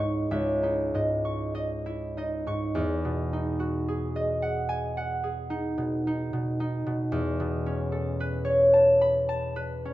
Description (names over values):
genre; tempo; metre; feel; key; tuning
classical, solo harp piece; 47-57 BPM; 4/4; rubato; E major; A4 = 440 Hz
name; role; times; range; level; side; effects
concert harp; solo; 0.0-9.9 s; C#2 to C#6; -25 LUFS; equal; none
room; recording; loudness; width
moderate recital hall reverb, RT60 1.3 s; close, detailed microphones; -25 LUFS; side -15 dB against mid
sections
0.0-2.8 A section; 2.8-9.9 B section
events
none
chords
0.0 C#madd9; 2.8 Emaj9; 7.1 B11/E